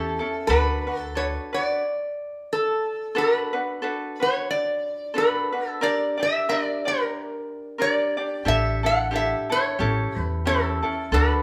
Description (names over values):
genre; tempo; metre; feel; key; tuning
Hawaiian; 90 BPM; 4/4; swing 57% on 8ths; D major; A4 = 440 Hz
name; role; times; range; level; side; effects
metal-body resonator slide guitar; melody; 0.0-11.4 s; A4 to F#5; -26 LUFS; equal; none
ukulele; accompaniment; 0.0-11.4 s; C#4 to D5; -30 LUFS; equal; none
upright bass; bass; 0.0-1.4, 8.5-11.4 s; A1 to E2; -28 LUFS; equal; none
room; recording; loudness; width
wet large studio reverb, RT60 1.1 s; band playing live in one room; -24 LUFS; mono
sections
0.0-3.1 A section; 3.1-11.4 A section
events
stop 1.8-3.1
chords
0.5 D6; 5.8 Gm; 8.5 A7sus4; 9.8 A7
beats
| 0.48 1.15 1.82 2.48 | 3.15 3.81 4.47 5.14 | 5.80 6.47 7.13 7.80 | 8.46 9.13 9.79 10.46 | 11.12